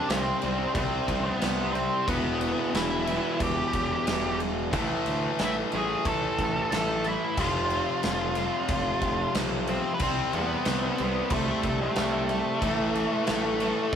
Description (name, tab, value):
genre	quiet-loud alternative rock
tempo	91 BPM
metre	4/4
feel	straight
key	unclear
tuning	A4 = 440 Hz
part	octave-fuzz lead guitar	melody	0.0-14.0 s	A3 to A5	-29 LUFS	equal	distortion
part	distorted electric guitar	riff	0.0-14.0 s	E2 to C4	-32 LUFS	left 8 dB	overdrive
part	raw garage guitar	riff	0.0-14.0 s	E2 to C4	-32 LUFS	right 6 dB	overdrive
part	fuzz picked electric bass	bass	0.1-14.0 s	E1 to E2	-33 LUFS	equal	overdrive
part	big rock drum kit	drums	0.1-14.0 s	crash cymbal, kick drum, snare drum, toms	-32 LUFS	equal	none
room	moderate studio reverb, RT60 0.7 s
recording	band playing live in one room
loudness	-24 LUFS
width	side -8 dB against mid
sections	0.0-14.0 A section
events	none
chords	0.0 C5; 2.1 Em; 4.7 A5; 7.4 F5; 10.0 C5; 12.6 A5